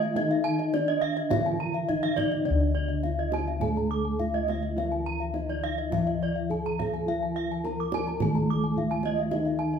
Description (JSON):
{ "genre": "Balinese gamelan", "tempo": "104 BPM", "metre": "4/4", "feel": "straight", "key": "D pelog", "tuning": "A4 = 440 Hz", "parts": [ { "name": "gamelan-type bronze metallophone", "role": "melody", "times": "0.0-9.8 s", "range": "D4 to Bb4-40c", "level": "-32 LUFS", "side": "equal", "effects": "none" }, { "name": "gamelan-type bronze metallophone", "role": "accompaniment", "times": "0.0-9.8 s", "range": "D3 to A3-45c", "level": "-34 LUFS", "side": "right 3 dB", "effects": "none" }, { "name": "gamelan-type bronze metallophone", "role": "arpeggios", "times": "0.0-9.8 s", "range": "D5 to Bb5-40c", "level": "-32 LUFS", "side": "left 4 dB", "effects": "none" }, { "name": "gamelan-type bossed gongs", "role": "bass", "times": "0.0-9.8 s", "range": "D2 to E4+50c", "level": "-30 LUFS", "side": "left 2 dB", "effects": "none" }, { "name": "kendang", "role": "percussion", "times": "0.0-9.8 s", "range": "none", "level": "-36 LUFS", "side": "right 3 dB", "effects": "none" }, { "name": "gamelan-type bronze metallophone", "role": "arpeggios", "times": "0.4-9.7 s", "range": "D5 to D6", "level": "-32 LUFS", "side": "right 5 dB", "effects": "none" } ], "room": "wet large studio reverb, RT60 1.1 s", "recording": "band playing live in one room", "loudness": "-25 LUFS", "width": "side -7 dB against mid", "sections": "0.0-9.8 A section", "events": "none", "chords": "none" }